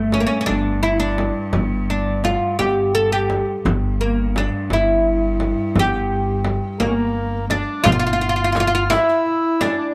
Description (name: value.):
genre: Arabic maqam ensemble.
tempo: 57 BPM (dotted quarters).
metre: 6/8.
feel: straight.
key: unclear.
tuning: A4 = 440 Hz.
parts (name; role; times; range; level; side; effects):
oud; melody; 0.0-9.9 s; A3 to A4; -22 LUFS; equal; none.
upright bass; bass; 0.0-8.9 s; G1; -26 LUFS; equal; none.
clear cello; drone; 0.0-7.9 s; G2; -30 LUFS; equal; none.
frame drum; percussion; 0.1-9.8 s; none; -26 LUFS; equal; none.
accordion; second line; 6.8-9.9 s; Bb3 to F4; -26 LUFS; equal; none.
darbuka; percussion; 7.8-9.8 s; none; -29 LUFS; equal; none.
riq; percussion; 7.9-9.8 s; none; -33 LUFS; equal; none.
room: moderate spring reverb, RT60 1.4 s.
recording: none.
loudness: -19 LUFS.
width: mono.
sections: 0.0-7.8 A section; 7.8-9.9 B section.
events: none.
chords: none.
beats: 0.48 | 1.54 2.59 | 3.64 4.70 | 5.75 6.80 | 7.85 8.90.